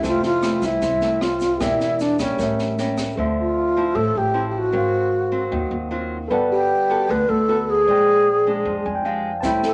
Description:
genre	bossa nova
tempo	153 BPM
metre	4/4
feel	straight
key	F major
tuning	A4 = 439 Hz
part	bright wooden-headed alto flute	melody	0.0-9.7 s	Db4 to B4	-22 LUFS	equal	none
part	bright tine electric piano	accompaniment	0.0-9.7 s	G4 to A5	-29 LUFS	equal	none
part	nylon-string guitar	accompaniment	0.0-9.7 s	F2 to A4	-30 LUFS	equal	none
part	upright bass	bass	0.0-9.7 s	E1 to F2	-30 LUFS	equal	none
part	open jazz drum kit	drums	0.0-3.1, 9.4-9.7 s	kick drum, rim click, snare drum	-31 LUFS	equal	none
part	tube shaker	percussion	0.0-3.2, 9.4-9.7 s	none	-46 LUFS	equal	none
room	wet small room reverb, RT60 0.6 s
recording	nothing above 10.4 kHz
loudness	-20 LUFS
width	mono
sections	0.0-3.2 A section; 3.2-9.7 B section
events	tine electric piano fill 8.7-9.4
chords	0.0 Fmaj7; 1.6 Em7b5; 2.4 A7b9; 3.2 Dm9; 4.7 G#13; 6.3 Gmaj9; 7.9 Bb13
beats	| 0.04 0.43 0.82 1.21 | 1.60 2.00 2.39 2.78 | 3.17 3.56 3.95 4.34 | 4.74 5.13 5.52 5.91 | 6.30 6.70 7.09 7.48 | 7.87 8.26 8.65 9.04 | 9.44

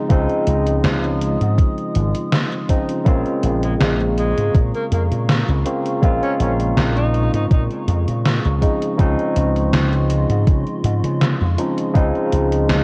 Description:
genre	vaporwave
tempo	81 BPM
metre	4/4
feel	swing 53% on 16ths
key	unclear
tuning	A4 = 437 Hz
part	barky tine electric piano	accompaniment	0.0-12.8 s	Db3 to F4	-24 LUFS	equal	overdrive, subtle chorus, tape echo
part	warbly tape-like pad	sustained chords	0.0-12.8 s	F4 to Eb6	-33 LUFS	equal	chorus, built-in reverb
part	slap bass with an envelope filter	bass	0.1-12.8 s	Ab1 to Db3	-22 LUFS	equal	none
part	electronic kick drum	drums	0.1-12.1 s	none	-18 LUFS	equal	overdrive
part	gated 80s digital drum machine	drums	0.1-12.8 s	hi-hat, snare drum	-24 LUFS	equal	gated reverb, gated reverb snare, overdrive
part	warm tenor saxophone	melody	3.6-7.6 s	Ab3 to Eb4	-29 LUFS	equal	tape echo
room	moderate concert hall reverb, RT60 2.2 s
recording	worn, warbling old tape, cassette tape, warbly pitch drift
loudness	-18 LUFS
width	mono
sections	0.0-12.8 A section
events	none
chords	0.0 Dbmaj9; 3.1 Bbm7; 8.6 Dbmaj9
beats	| 0.10 0.84 1.58 2.33 | 3.07 3.81 4.55 5.29 | 6.03 6.77 7.51 8.25 | 8.99 9.73 10.47 11.21 | 11.96 12.70

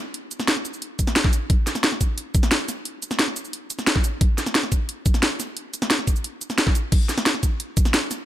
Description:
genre	drum and bass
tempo	177 BPM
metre	4/4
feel	straight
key	none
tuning	none
part	drum and bass drum kit	drums	0.1-8.2 s	cabasa, crash cymbal, hi-hat, snare drum	-22 LUFS	equal	overdrive
part	electronic kick drum	drums	1.0-7.8 s	none	-20 LUFS	equal	overdrive
room	little or no reverb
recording	none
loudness	-20 LUFS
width	side -13 dB against mid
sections	0.0-8.3 A section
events	none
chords	none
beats	| 0.14 0.48 0.82 1.16 | 1.50 1.84 2.18 2.52 | 2.85 3.19 3.53 3.87 | 4.21 4.55 4.89 5.23 | 5.57 5.91 6.24 6.58 | 6.92 7.26 7.60 7.94

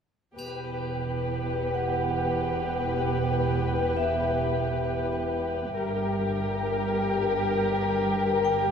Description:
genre	cinematic, suspense film score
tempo	67 BPM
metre	3/4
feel	straight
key	E minor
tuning	A4 = 442 Hz
part	muted studio violin section	second line	0.4-8.7 s	G4 to B4	-27 LUFS	left 4 dB	none
part	muted symphonic cello section	bass	0.4-8.7 s	E2 to G2	-32 LUFS	right 2 dB	none
part	muted symphonic double bass section	bass	0.4-8.7 s	E1 to G1	-33 LUFS	right 4 dB	none
part	triangle	percussion	0.4-2.1 s	none	-48 LUFS	equal	none
part	vibraphone with hard mallets	texture	1.7-8.7 s	E5 to G5	-33 LUFS	right 4 dB	none
room	moderate scoring stage reverb, RT60 1.9 s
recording	minimal, uncompressed stereo recording, lossy compression artefacts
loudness	-25 LUFS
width	side -7 dB against mid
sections	0.4-8.7 A section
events	none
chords	0.4 Em; 5.8 Gm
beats	| 0.38 1.28 2.17 | 3.07 3.96 4.86 | 5.76 6.65 7.55 | 8.44

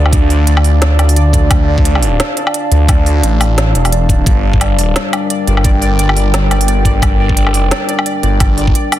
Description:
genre	half-time drum and bass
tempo	174 BPM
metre	4/4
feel	swing 57% on 16ths, half-time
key	D minor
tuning	A4 = 440 Hz
part	dark analog pad	sustained chords	0.0-9.0 s	G3 to A5	-19 LUFS	equal	chorus, sidechain pumping
part	phased detuned saw bass	bass	0.0-8.7 s	E1 to D2	-12 LUFS	equal	phaser, tube saturation
part	pulsing gated texture	texture	0.0-9.0 s	D5	-23 LUFS	equal	chorus, built-in reverb
part	electronic kick drum	drums	0.1-8.7 s	none	-12 LUFS	equal	none
part	organic electronic drum kit	drums	0.1-9.0 s	hi-hat, snare drum, woodblock	-18 LUFS	equal	soft clipping on snare
room	little or no reverb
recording	dense, heavily limited modern master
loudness	-9 LUFS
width	side -13 dB against mid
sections	0.0-9.0 A section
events	none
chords	0.0 Dm; 4.3 Gm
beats	| 0.13 0.47 0.82 1.16 | 1.51 1.85 2.20 2.54 | 2.89 3.23 3.58 3.92 | 4.27 4.61 4.96 5.30 | 5.65 5.99 6.34 6.68 | 7.03 7.37 7.71 8.06 | 8.40 8.75

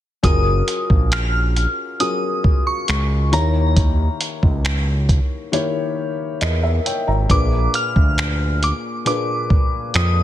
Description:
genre	contemporary R&B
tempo	68 BPM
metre	4/4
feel	straight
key	F# major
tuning	A4 = 440 Hz
part	glassy synth bell	melody	0.2-10.2 s	A#5 to E#6	-23 LUFS	equal	chorus, tremolo, digital delay
part	felt-muted upright piano	accompaniment	0.2-10.2 s	A#2 to A#5	-24 LUFS	left 3 dB	none
part	smooth synth bass	bass	0.2-10.2 s	F#1 to E#2	-18 LUFS	equal	none
part	dusty soul sampler-style drum kit	drums	0.2-10.2 s	finger snaps, hi-hat, kick drum	-19 LUFS	equal	soft clipping on snare
room	digital ambience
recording	dense, heavily limited modern master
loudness	-16 LUFS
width	side -12 dB against mid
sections	0.2-10.2 A section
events	none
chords	0.2 F#maj7; 3.3 D#7b9; 7.3 A#7b9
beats	| 0.24 1.12 2.00 2.88 | 3.77 4.65 5.53 6.41 | 7.29 8.18 9.06 9.94

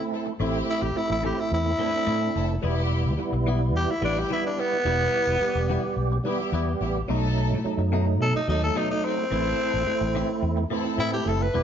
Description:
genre	blues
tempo	108 BPM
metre	4/4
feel	straight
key	E minor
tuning	A4 = 439 Hz
part	growling tenor saxophone	melody	0.0-11.6 s	B3 to B4	-26 LUFS	left 1 dB	none
part	tonewheel organ	accompaniment	0.0-11.6 s	F#3 to G4	-29 LUFS	right 5 dB	slow rotary speaker, overdrive, chorus vibrato
part	direct-recorded clean electric guitar	stabs	0.0-11.6 s	A2 to G4	-33 LUFS	left 4 dB	phaser
part	clear studio string section	sustained chords	0.1-11.6 s	B3 to B4	-36 LUFS	left 3 dB	none
part	fingered electric bass	bass	0.4-11.6 s	E1 to B2	-27 LUFS	equal	none
room	wet stone room reverb, RT60 1.3 s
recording	band playing live in one room, nothing above 7.5 kHz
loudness	-22 LUFS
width	side -8 dB against mid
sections	0.0-11.6 A section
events	tenor saxophone solo 0.0-11.6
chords	0.0 Am; 2.6 Em; 7.1 B7; 9.3 Am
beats	| 0.40 0.96 1.52 2.07 | 2.63 3.19 3.75 4.30 | 4.86 5.42 5.97 6.53 | 7.09 7.65 8.20 8.76 | 9.32 9.88 10.44 10.99 | 11.55

